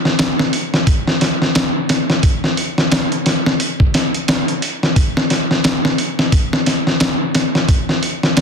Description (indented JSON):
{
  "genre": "trip hop",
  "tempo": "88 BPM",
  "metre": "4/4",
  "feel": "swing 59% on 16ths",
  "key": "none",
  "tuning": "none",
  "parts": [
    { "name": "dusty soul sampler-style drum kit", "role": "drums", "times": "0.1-8.4 s", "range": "hi-hat, kick drum, snare drum", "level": "-14 LUFS", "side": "equal", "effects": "none" }
  ],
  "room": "light reverb",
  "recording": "dense, heavily limited modern master",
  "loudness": "-14 LUFS",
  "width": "side -6 dB against mid",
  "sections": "0.0-8.4 A section",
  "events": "none",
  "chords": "none",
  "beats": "0.19 0.87 1.55 | 2.23 2.91 3.60 4.28 | 4.96 5.64 6.32 7.00 | 7.69 8.37"
}